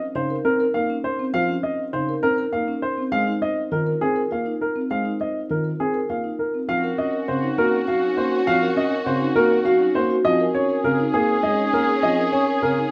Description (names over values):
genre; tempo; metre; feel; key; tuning
classical, minimalist pattern music; 101 BPM; 3/4; straight; Eb dorian from 6.7 s; A4 = 440 Hz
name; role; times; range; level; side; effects
warm baby grand piano; melody; 0.0-12.8 s; Ab4 to F5; -26 LUFS; equal; none
dark baby grand piano; accompaniment; 0.1-12.8 s; Db3 to C4; -30 LUFS; equal; none
marimba with soft mallets; arpeggios; 0.2-12.9 s; C4 to C5; -26 LUFS; equal; none
warm oboe; second line; 6.7-12.9 s; Gb4 to Ab4; -30 LUFS; equal; none
warm symphonic violin section; sustained chords; 6.7-12.9 s; Db4 to Ab4; -31 LUFS; equal; none
room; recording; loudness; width
moderate large studio reverb, RT60 1.4 s; none; -22 LUFS; mono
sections
0.0-6.7 A section; 6.7-12.9 B section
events
none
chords
0.0 Bbmadd9; 3.1 Abadd9 (rootless); 6.7 Ebm9; 10.3 Bbm11